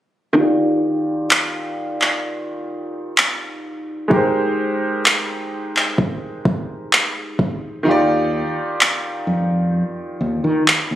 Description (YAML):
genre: contemporary R&B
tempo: 64 BPM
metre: 4/4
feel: straight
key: Eb major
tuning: A4 = 442 Hz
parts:
  - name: bright concert grand piano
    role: accompaniment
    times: 0.3-11.0 s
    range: Eb3 to D5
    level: -20 LUFS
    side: equal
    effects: low-pass filter
  - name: smooth R&B drum kit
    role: drums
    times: 1.3-10.9 s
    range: handclaps, kick drum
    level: -16 LUFS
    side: equal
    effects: none
  - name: fretless electric bass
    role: bass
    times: 7.9-11.0 s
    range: Eb2 to Eb3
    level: -19 LUFS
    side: equal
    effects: none
room: light reverb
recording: recorded on a phone in the room, studio reverb, compression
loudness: -17 LUFS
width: side -12 dB against mid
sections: 0.4-7.9 A section; 7.9-11.0 B section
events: filter sweep on grand piano 0.4-7.9; kick muted 7.9-11.0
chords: 0.4 Ebmaj9; 4.1 Abmaj9; 7.9 Ebmaj9